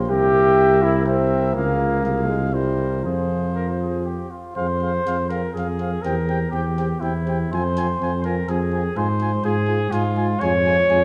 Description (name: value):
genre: classical, brass quintet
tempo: 123 BPM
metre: 3/4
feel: rubato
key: F minor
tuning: A4 = 442 Hz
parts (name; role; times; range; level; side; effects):
- mellow trumpet; second line; 0.0-11.0 s; E4 to Db5; -27 LUFS; equal; none
- warm French horn; accompaniment; 0.0-11.0 s; E4 to Ab4; -33 LUFS; equal; none
- mellow bass trombone; bass; 0.0-11.0 s; Bb1 to Ab2; -25 LUFS; equal; none
- mellow trumpet; melody; 0.1-11.0 s; C5 to Ab5; -32 LUFS; equal; none
- clear trombone; accompaniment; 0.1-11.0 s; F3 to G4; -26 LUFS; equal; none
room: wet recital hall reverb, RT60 1.8 s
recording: faint mains hum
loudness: -21 LUFS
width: mono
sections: 0.0-4.6 A section; 4.6-11.0 A section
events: none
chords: 0.1 C7; 1.5 Db; 2.0 Fm/C; 2.5 C7; 3.0 Fm; 6.0 C7/E; 7.5 Fm; 9.0 Fm/Ab; 10.4 Db/F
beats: | 0.09 0.58 1.06 | 1.55 2.03 2.53 | 3.04 3.55 4.06 | 4.56 5.05 5.54 | 6.03 6.52 7.01 | 7.51 8.00 8.48 | 8.96 9.44 9.92 | 10.41 10.90